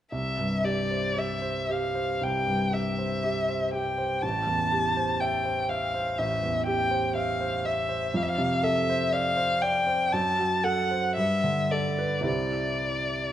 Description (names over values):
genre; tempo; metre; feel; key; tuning
classical, romantic duo for violin and grand piano; 59 BPM; 4/4; uneven beats, rubato; C major; A4 = 440 Hz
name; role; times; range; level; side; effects
warm violin; melody; 0.1-13.3 s; D5 to A5; -27 LUFS; left 1 dB; none
bright grand piano; accompaniment; 0.1-13.3 s; A1 to E5; -28 LUFS; right 1 dB; none
room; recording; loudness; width
moderate scoring stage reverb, RT60 1.7 s; close, detailed microphones; -24 LUFS; side -11 dB against mid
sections
0.1-13.3 A section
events
none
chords
0.1 C; 4.2 Am7; 8.2 Dm7/F; 10.1 F#dim; 11.2 G69; 12.3 C